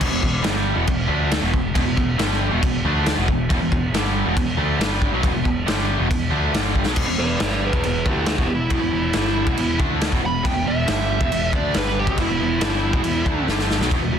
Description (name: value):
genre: hard rock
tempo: 138 BPM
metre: 4/4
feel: straight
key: unclear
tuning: A4 = 439 Hz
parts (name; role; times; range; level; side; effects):
- overdriven electric guitar; riff; 0.0-14.2 s; E2 to D4; -23 LUFS; equal; none
- growling picked electric bass; bass; 0.0-14.2 s; E1 to D2; -25 LUFS; equal; overdrive
- raw garage drum kit; drums; 0.0-14.0 s; crash cymbal, kick drum, snare drum; -22 LUFS; equal; none
- dark smooth lead guitar; melody; 7.2-13.5 s; E4 to B5; -24 LUFS; right 1 dB; overdrive
room: light reverb, small room reverb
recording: dense, heavily limited modern master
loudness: -18 LUFS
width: side -8 dB against mid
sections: 0.0-7.0 A section; 7.0-14.2 B section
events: drum fill 6.8, 13.5-13.9; lead electric guitar solo 7.0-14.2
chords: 0.0 E5